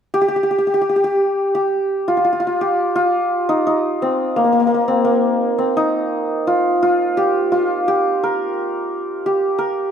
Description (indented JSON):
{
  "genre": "indian classical",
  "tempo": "86 BPM",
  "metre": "4/4",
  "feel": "straight",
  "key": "Eb raga bhupali",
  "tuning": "A4 = 441 Hz",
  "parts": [
    { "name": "santur", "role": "solo", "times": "0.1-9.9 s", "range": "Bb3 to Bb4", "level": "-16 LUFS", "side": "equal", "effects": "none" }
  ],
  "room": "light reverb",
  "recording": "none",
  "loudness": "-16 LUFS",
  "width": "side -8 dB against mid",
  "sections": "0.1-9.9 A section",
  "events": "none",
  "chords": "none"
}